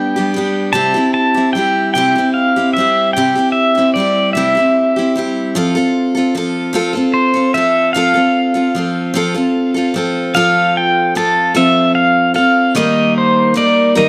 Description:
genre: rock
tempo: 50 BPM (dotted quarters)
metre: 6/8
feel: straight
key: unclear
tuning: A4 = 440 Hz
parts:
  - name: pedal steel guitar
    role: melody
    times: 0.0-14.1 s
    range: C5 to A5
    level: -16 LUFS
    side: equal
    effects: plate reverb
  - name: picked steel-string acoustic guitar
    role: accompaniment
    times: 0.0-14.1 s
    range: C3 to Bb4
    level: -17 LUFS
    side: equal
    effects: plate reverb
room: moderate studio reverb, RT60 0.8 s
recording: tape saturation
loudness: -14 LUFS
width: mono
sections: 0.0-10.4 A section; 10.4-14.1 B section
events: none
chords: 0.0 G; 0.8 C; 5.5 F; 12.8 Eb

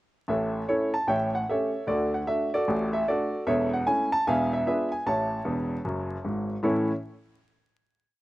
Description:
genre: jazz, stride piano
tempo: 151 BPM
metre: 4/4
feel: swing 65% on 8ths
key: A major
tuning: A4 = 440 Hz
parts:
  - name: clear concert grand piano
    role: solo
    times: 0.3-6.9 s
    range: E1 to A5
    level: -24 LUFS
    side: equal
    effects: none
room: little or no reverb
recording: recorded outdoors, with no room sound, vinyl crackle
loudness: -24 LUFS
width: side -17 dB against mid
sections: 0.3-6.6 A section; 6.6-8.2 final chord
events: grand piano fill 5.5-6.6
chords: 0.3 A; 1.1 A7; 1.9 D; 3.5 A/E; 4.3 E7b9; 5.1 A

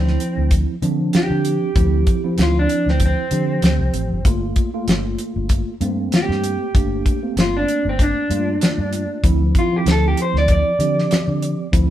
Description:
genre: straight-eighth soul blues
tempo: 96 BPM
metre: 4/4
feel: swing 55% on 16ths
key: D minor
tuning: A4 = 438 Hz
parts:
  - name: electric guitar through a small old amp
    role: melody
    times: 0.0-11.7 s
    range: C4 to D5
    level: -22 LUFS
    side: right 1 dB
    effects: slapback echo
  - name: mellow tine electric piano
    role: accompaniment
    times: 0.0-11.9 s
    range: F3 to G4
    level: -23 LUFS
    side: right 2 dB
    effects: medium stereo tremolo
  - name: vintage muted fingered electric bass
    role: bass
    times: 0.0-11.9 s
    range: G1 to D3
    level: -20 LUFS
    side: equal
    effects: none
  - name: damped 70s drum kit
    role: drums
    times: 0.1-11.9 s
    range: hi-hat, kick drum, snare drum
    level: -18 LUFS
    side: equal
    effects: none
room: light reverb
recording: band playing live in one room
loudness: -16 LUFS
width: side -12 dB against mid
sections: 0.0-11.9 A section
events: clean electric guitar solo 0.0-11.9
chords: 0.0 Dm7; 4.3 Gm7; 9.2 Dm7

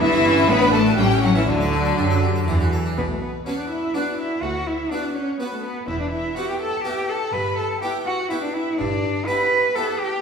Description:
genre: classical, baroque-style concerto movement with solo episodes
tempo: 124 BPM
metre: 3/4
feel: straight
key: B minor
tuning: A4 = 440 Hz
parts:
  - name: clear chamber violin section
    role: melody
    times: 0.0-10.2 s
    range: A4 to B5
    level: -29 LUFS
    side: left 5 dB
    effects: none
  - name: rich cello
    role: melody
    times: 0.0-10.2 s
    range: D3 to B4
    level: -22 LUFS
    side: equal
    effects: none
  - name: dark symphonic violin section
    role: second line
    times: 0.0-10.2 s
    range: D4 to B5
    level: -28 LUFS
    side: left 2 dB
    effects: none
  - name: clear studio viola section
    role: accompaniment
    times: 0.0-10.1 s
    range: F#3 to E4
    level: -28 LUFS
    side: equal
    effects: none
  - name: harpsichord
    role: accompaniment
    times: 0.0-10.1 s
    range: D2 to D5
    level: -28 LUFS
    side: right 1 dB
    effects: none
  - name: rich chamber double bass section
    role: bass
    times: 0.0-9.2 s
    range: E1 to F#2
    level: -25 LUFS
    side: right 2 dB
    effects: none
  - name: rich studio cello section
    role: bass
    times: 0.0-9.2 s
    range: D2 to F#3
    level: -32 LUFS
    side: right 2 dB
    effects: none
room: wet recital hall reverb, RT60 1.3 s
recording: heard from further back in the room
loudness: -19 LUFS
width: side -6 dB against mid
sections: 0.0-3.0 A section; 3.0-10.2 B section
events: none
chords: 0.0 Em/G; 0.5 D/A; 1.0 A; 1.5 D; 3.0 Bm; 4.4 Bm/D; 5.9 Em; 7.3 Em/G

